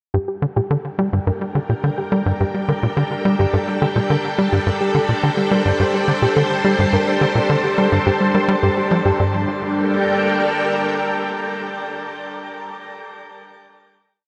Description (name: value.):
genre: ambient, sequencer-driven space music.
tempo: 106 BPM.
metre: 4/4.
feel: straight.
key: G minor.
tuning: A4 = 442 Hz.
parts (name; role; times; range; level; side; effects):
string machine, full ensemble; sustained chords; 0.1-12.2 s; G3 to G5; -23 LUFS; equal; ensemble chorus.
soft round pluck; arpeggios; 0.1-9.5 s; G3 to Bb4; -26 LUFS; equal; chorus, tape echo.
tight sequencer bass; riff; 0.1-9.5 s; G2 to G3; -22 LUFS; equal; tape echo.
room: wet shimmer reverb, RT60 7.6 s.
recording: none.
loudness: -19 LUFS.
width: mono.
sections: 0.1-9.2 A section; 9.2-11.5 final chord.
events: fade-in on string machine 0.1-9.2.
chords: 0.1 Gmadd9.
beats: | 0.14 0.70 1.27 1.84 | 2.40 2.97 3.53 4.10 | 4.67 5.23 5.80 6.37 | 6.93 7.50 8.06 8.63 | 9.20 9.76 10.33 10.89.